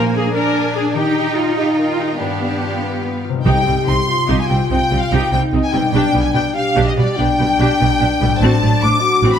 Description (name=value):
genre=cinematic, heroic adventure film score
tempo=97 BPM (dotted quarters)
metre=12/8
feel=straight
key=C harmonic minor from 3.5 s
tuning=A4 = 440 Hz
part: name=clear symphonic violin section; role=melody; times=0.0-9.4 s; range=D5 to D6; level=-23 LUFS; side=left 2 dB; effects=none
part: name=clear symphonic violin section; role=second line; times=0.0-9.4 s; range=Bb3 to D6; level=-24 LUFS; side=left 1 dB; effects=none
part: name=rich symphonic viola section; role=accompaniment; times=0.0-9.4 s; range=F#3 to Bb4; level=-22 LUFS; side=right 1 dB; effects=none
part: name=concert harp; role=arpeggios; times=0.0-9.4 s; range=G2 to Eb5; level=-24 LUFS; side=left 8 dB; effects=none
part: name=dark symphonic cello section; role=bass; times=0.0-9.3 s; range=A2 to Eb4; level=-21 LUFS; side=right 3 dB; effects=none
part: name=timpani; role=percussion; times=0.0-4.0 s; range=Bb2 to C3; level=-24 LUFS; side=right 2 dB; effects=none
part: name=mellow hollow silver concert flute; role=second line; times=3.5-9.4 s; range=D5 to D6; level=-23 LUFS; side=left 1 dB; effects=none
part: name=mellow French horn section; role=sustained chords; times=3.5-9.4 s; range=D4 to G4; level=-20 LUFS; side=left 4 dB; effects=none
part: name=rich symphonic double bass section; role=bass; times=3.5-9.3 s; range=A1 to C2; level=-19 LUFS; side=right 3 dB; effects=none
room=moderate concert hall reverb, RT60 2.1 s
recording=none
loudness=-14 LUFS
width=side -8 dB against mid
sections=0.0-3.5 A section; 3.5-9.4 B section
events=none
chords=0.0 Bb7; 1.0 Eb; 2.2 G7; 3.5 Cm; 5.9 G/B; 8.4 D7/A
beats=0.34 | 0.95 1.57 2.20 2.83 | 3.46 4.08 4.70 5.32 | 5.94 6.55 7.18 7.80 | 8.41 9.02